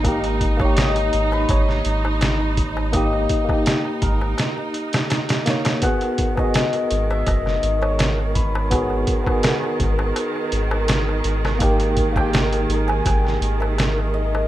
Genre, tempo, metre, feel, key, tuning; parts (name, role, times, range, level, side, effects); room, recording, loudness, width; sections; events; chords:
trip hop; 83 BPM; 4/4; straight; G# minor; A4 = 440 Hz
hammered dulcimer; melody; 0.0-14.5 s; A#4 to G#5; -27 LUFS; left 2 dB; tape echo
tine electric piano; accompaniment; 0.0-14.5 s; D#3 to C#5; -25 LUFS; equal; harmonic tremolo, vintage 12-bit sampler grit, tape echo
clear studio string section; sustained chords; 0.0-14.5 s; D#3 to D#4; -26 LUFS; right 2 dB
soft dub sub bass; bass; 0.0-14.5 s; F#1 to G#1; -22 LUFS; equal; tube saturation
trip hop sampler-style drum kit; drums; 0.0-14.0 s; hi-hat, kick drum, snare drum; -22 LUFS; equal
darbuka; percussion; 0.0-14.5 s; -33 LUFS; left 3 dB
bowed-like drone; texture; 0.0-14.5 s; D#4 to G#4; -34 LUFS; right 1 dB
digital ambience; rough home demo mix; -18 LUFS; side -14 dB against mid
0.0-14.5 A section
0.0 D#/G#; 5.8 G#m7; 11.6 D#/G#